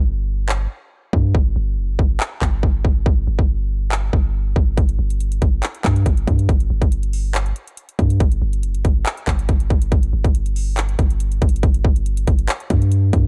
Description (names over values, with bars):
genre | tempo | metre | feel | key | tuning
hip hop, trap | 140 BPM | 4/4 | half-time | unclear | A4 = 439 Hz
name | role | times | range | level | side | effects
long sustained 808-style bass | bass | 0.0-13.3 s | F#1 to G2 | -21 LUFS | equal | none
trap drum kit | drums | 0.5-13.2 s | handclaps, hi-hat, kick drum | -20 LUFS | equal | none
room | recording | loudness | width
digital ambience | dark, warm production | -19 LUFS | mono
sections
0.0-11.6 A section; 11.6-13.3 B section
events
break 0.0-4.8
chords
none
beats
0.06 0.49 0.92 | 1.35 1.77 2.20 2.63 | 3.06 3.49 3.92 4.35 | 4.78 5.20 5.63 6.06 | 6.49 6.92 7.35 7.78 | 8.20 8.63 9.06 9.49 | 9.92 10.35 10.78 11.20 | 11.63 12.06 12.49 12.92